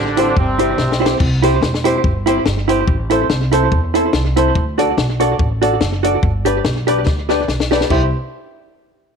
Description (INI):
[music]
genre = ska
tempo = 143 BPM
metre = 4/4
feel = swing 55% on 8ths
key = C major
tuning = A4 = 438 Hz
[part]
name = warm horn section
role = melody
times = 0.0-1.0 s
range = C3 to D4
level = -20 LUFS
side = right 1 dB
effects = none
[part]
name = upright bass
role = bass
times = 0.0-8.1 s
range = E1 to E2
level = -19 LUFS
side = equal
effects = none
[part]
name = hollow-body jazz guitar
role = accompaniment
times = 0.2-8.0 s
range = E4 to D5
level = -19 LUFS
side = right 13 dB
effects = slapback echo
[part]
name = dark upright piano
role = stabs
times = 0.2-8.1 s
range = C4 to E5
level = -20 LUFS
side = left 13 dB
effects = none
[part]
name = compact cocktail drum kit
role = drums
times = 0.2-8.0 s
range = crash cymbal, hi-hat, kick drum, snare drum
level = -19 LUFS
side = left 2 dB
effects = slapback echo
[sound]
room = light reverb, studio reverb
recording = 1960s-style stereo with parts hard left and right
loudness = -13 LUFS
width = side -6 dB against mid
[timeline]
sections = 0.0-1.2 A section; 1.2-7.9 B section; 7.9-9.2 C section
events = drum fill 0.8-1.2, 7.1-7.9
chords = 0.0 C; 2.9 Am; 4.6 D; 6.2 G; 7.9 C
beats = 0.36 0.78 | 1.20 1.62 2.04 2.46 | 2.88 3.30 3.71 4.13 | 4.55 4.97 5.39 5.81 | 6.23 6.65 7.07 7.49 | 7.90